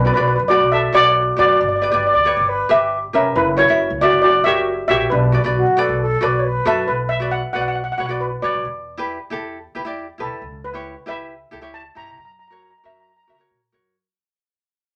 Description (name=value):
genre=calypso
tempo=136 BPM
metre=4/4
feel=straight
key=B minor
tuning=A4 = 441 Hz
part: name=steel pan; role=melody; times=0.0-13.4 s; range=C#4 to A#5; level=-19 LUFS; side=equal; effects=none
part: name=ukulele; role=accompaniment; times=0.0-14.0 s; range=E4 to E5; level=-24 LUFS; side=equal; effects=none
part: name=upright bass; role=bass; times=0.0-13.9 s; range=E#1 to C#3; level=-27 LUFS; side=equal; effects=none
part: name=mellow baroque flute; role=second line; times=2.3-6.9 s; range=F#4 to D5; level=-22 LUFS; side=equal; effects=none
room=wet studio reverb, RT60 0.5 s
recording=none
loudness=-17 LUFS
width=mono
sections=0.0-6.9 A section; 6.9-14.0 B section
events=fade-out 6.9-14.0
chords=0.0 Bm; 1.6 G6; 3.4 F#7; 5.1 Bm; 8.6 Em7; 10.4 C#m7b5; 12.2 F#7